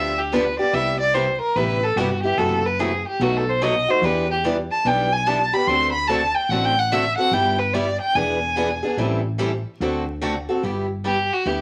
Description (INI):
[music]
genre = acoustic string swing (jazz manouche)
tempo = 145 BPM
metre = 4/4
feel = swing 64% on 8ths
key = G major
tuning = A4 = 440 Hz
[part]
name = clear violin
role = melody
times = 0.0-11.6 s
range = F#4 to C6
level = -23 LUFS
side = equal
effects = none
[part]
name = picked steel-string acoustic guitar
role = accompaniment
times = 0.0-11.6 s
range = B2 to A4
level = -27 LUFS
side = equal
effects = none
[part]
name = picked steel-string acoustic guitar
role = accompaniment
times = 0.0-10.3 s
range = B2 to B4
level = -31 LUFS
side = equal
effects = none
[part]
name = woody fretless electric bass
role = bass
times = 0.0-11.6 s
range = E1 to E2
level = -30 LUFS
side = equal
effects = none
[sound]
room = moderate studio reverb, RT60 0.7 s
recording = vinyl crackle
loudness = -21 LUFS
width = mono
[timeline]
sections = 0.0-10.6 A section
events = violin solo 0.0-10.6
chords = 0.0 G7; 0.7 Cmaj7; 2.4 F#m7b5; 3.2 B7; 4.0 Em7; 5.7 D7; 7.3 G6; 8.2 E7; 9.0 Am7; 9.8 D7; 10.6 G6